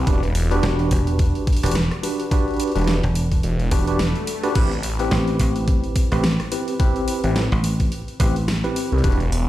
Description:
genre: glitch hop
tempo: 107 BPM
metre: 4/4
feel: swing 57% on 16ths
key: A dorian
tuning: A4 = 438 Hz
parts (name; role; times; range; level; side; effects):
- tine electric piano; stabs; 0.0-9.2 s; C4 to B4; -24 LUFS; equal; medium stereo tremolo, sidechain pumping, digital delay
- phased detuned saw bass; bass; 0.0-9.5 s; E1 to C2; -20 LUFS; equal; phaser
- dubstep drum kit; drums; 0.1-9.5 s; crash cymbal, hi-hat, rim click, snare drum; -28 LUFS; equal; overdrive
- electronic kick drum; drums; 0.1-9.2 s; none; -20 LUFS; equal; overdrive
- dry thumbed slap bass; bass; 0.6-8.6 s; E1 to A1; -21 LUFS; equal; none
- swell; sound effects; 3.8-4.6 s; none; -33 LUFS; left 2 dB; none
room: light reverb, digital ambience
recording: played on a big sound system in a bare room, large studio reverb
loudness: -18 LUFS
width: side -14 dB against mid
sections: 0.0-9.5 A section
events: swell 3.8-4.6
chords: 0.1 Em7; 4.6 Am7

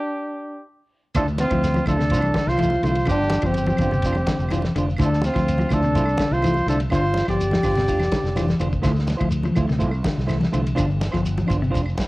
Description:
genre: afrobeat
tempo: 125 BPM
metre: 4/4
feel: straight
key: D minor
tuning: A4 = 438 Hz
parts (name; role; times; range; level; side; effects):
- trombone with bucket mute; melody; 0.0-8.6 s; C4 to G4; -24 LUFS; equal; cassette tape
- clear trumpet; second line; 0.0-8.6 s; F4 to D5; -29 LUFS; right 1 dB; cassette tape
- warm soul drum kit; drums; 1.1-12.1 s; hi-hat, kick drum, ride cymbal, snare drum; -29 LUFS; equal; cassette tape
- congas; percussion; 1.1-12.1 s; none; -28 LUFS; equal; none
- clean electric guitar; arpeggios; 1.2-11.8 s; C3 to F3; -26 LUFS; left 3 dB; cassette tape
- semi-hollow electric guitar; stabs; 1.2-12.0 s; A3 to C5; -30 LUFS; right 3 dB; cassette tape, analog delay
- fingered electric bass; bass; 1.2-11.9 s; F1 to D2; -24 LUFS; equal; none
- claves; percussion; 1.2-12.0 s; none; -40 LUFS; right 1 dB; none
- shekere; percussion; 1.2-12.1 s; none; -33 LUFS; right 1 dB; none
room: light reverb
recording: home recording on cassette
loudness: -18 LUFS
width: side -20 dB against mid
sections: 0.0-1.2 A section; 1.2-12.1 B section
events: stop 0.0-1.2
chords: 0.0 N.C.; 1.2 Dm9; 3.1 G7sus4; 5.0 Dm9; 6.9 G7sus4; 8.8 Dm9; 10.8 G7sus4

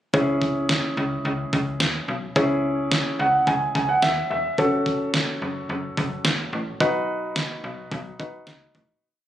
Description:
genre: synth-pop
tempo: 108 BPM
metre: 4/4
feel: straight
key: C# minor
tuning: A4 = 443 Hz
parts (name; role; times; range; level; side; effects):
- warm grand piano; accompaniment; 0.1-9.0 s; C#4 to G#5; -23 LUFS; equal; none
- slap-like FM bass; bass; 0.1-8.9 s; E1 to D#2; -28 LUFS; equal; none
- detuned 8-bit digital drum machine; drums; 0.1-8.9 s; kick drum, snare drum; -25 LUFS; equal; overdrive
room: moderate lush hall reverb, RT60 1.8 s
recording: recorded on a phone in the room, studio reverb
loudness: -21 LUFS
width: side -12 dB against mid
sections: 0.1-9.0 verse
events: grand piano fill 2.9-4.6; fade-out 6.8-9.0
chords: 0.1 C#m; 4.6 F#m; 6.8 B

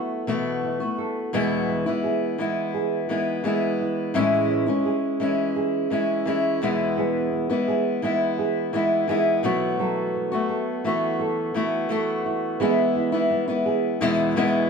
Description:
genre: acoustic pop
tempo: 85 BPM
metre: 4/4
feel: straight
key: E major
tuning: A4 = 440 Hz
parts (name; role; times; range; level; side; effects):
- fingerpicked steel-string acoustic guitar; accompaniment; 0.0-14.7 s; E2 to F#4; -22 LUFS; left 3 dB; none
- nylon-string guitar; arpeggios; 0.0-14.7 s; F#3 to A4; -27 LUFS; right 7 dB; none
room: moderate large studio reverb, RT60 0.9 s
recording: band playing live in one room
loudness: -21 LUFS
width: side -5 dB against mid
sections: 0.0-1.3 A section; 1.3-12.6 B section; 12.6-14.7 C section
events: none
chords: 0.0 B7sus4; 1.3 E; 4.2 Amaj7; 6.6 E; 9.4 B7sus4; 12.6 E

